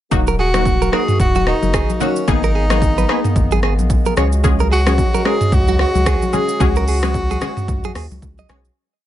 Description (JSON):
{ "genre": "afrobeats", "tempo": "111 BPM", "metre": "4/4", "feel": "swing 58% on 16ths", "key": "unclear", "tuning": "A4 = 440 Hz", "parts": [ { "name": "analog pluck", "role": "accompaniment", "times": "0.1-8.7 s", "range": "Gb3 to Ab4", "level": "-22 LUFS", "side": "left 2 dB", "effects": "chorus" }, { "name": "warm woodwind section", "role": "sustained chords", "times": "0.1-8.7 s", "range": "Db3 to Gb4", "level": "-27 LUFS", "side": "left 2 dB", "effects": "none" }, { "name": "saturated sub bass", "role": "bass", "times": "0.1-8.7 s", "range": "Eb1 to Eb2", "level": "-18 LUFS", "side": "equal", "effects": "none" }, { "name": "deep house drum kit", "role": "drums", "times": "0.1-8.8 s", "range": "hi-hat, kick drum, rim click, shaker, toms", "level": "-19 LUFS", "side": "equal", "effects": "none" }, { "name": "congas", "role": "percussion", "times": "0.1-8.6 s", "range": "none", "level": "-26 LUFS", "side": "left 4 dB", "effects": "none" }, { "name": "direct-recorded clean electric guitar", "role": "riff", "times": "0.3-8.6 s", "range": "Gb4 to Eb5", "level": "-23 LUFS", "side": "right 8 dB", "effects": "tape echo" }, { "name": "breathy tenor saxophone", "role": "melody", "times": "0.4-8.2 s", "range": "Db4 to Ab4", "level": "-21 LUFS", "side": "equal", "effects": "none" } ], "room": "digital ambience", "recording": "nothing above 11.0 kHz", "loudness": "-14 LUFS", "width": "side -12 dB against mid", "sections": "0.1-8.8 chorus", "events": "fade-out 6.6-8.8", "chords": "0.1 Ebm; 2.3 Abmadd9; 4.2 Dbsus4", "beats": "| 0.12 0.66 1.20 1.74 | 2.28 2.82 3.36 3.90 | 4.44 4.98 5.52 6.06 | 6.60 7.14 7.68 8.22" }